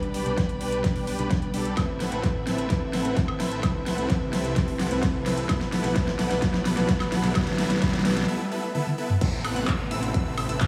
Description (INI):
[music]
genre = EDM, festival progressive house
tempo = 129 BPM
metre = 4/4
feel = straight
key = G major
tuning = A4 = 440 Hz
[part]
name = mellow electric guitar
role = accompaniment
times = 0.0-8.3 s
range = A2 to D5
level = -33 LUFS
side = equal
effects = sidechain pumping, dub echo
[part]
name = warm studio string section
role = sustained chords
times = 0.0-10.7 s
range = C3 to B5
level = -39 LUFS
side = equal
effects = none
[part]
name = big supersaw lead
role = riff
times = 0.0-10.7 s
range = B3 to F#5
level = -34 LUFS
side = equal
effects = sidechain pumping, low-pass filter, dub echo
[part]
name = detuned saw bass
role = bass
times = 0.0-10.7 s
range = A1 to A2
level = -36 LUFS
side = equal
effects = chorus, sidechain pumping
[part]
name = big-room dance drum kit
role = drums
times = 0.0-10.7 s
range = crash cymbal, handclaps, hi-hat, snare drum, toms, woodblock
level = -30 LUFS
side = equal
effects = overdrive
[part]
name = riser and downlifter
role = sound effects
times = 2.0-10.7 s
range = none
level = -38 LUFS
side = equal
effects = none
[part]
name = electronic kick drum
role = drums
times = 0.4-10.7 s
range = none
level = -29 LUFS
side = equal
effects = overdrive
[part]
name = plucky unison lead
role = arpeggios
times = 9.2-10.7 s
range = E6 to F#6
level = -39 LUFS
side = equal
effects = sidechain pumping, dub echo
[sound]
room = moderate huge ambient reverb, RT60 4.8 s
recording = small room ambience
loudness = -25 LUFS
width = mono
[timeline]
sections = 0.0-9.2 A section; 9.2-10.7 B section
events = build-up 0.0-9.2; drum fill 0.0-8.3, 8.7-9.2; break 8.3-9.2; drop 9.2-10.7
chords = 0.0 G/B; 1.8 Amadd9; 3.6 C; 5.5 G/B; 9.2 Amadd9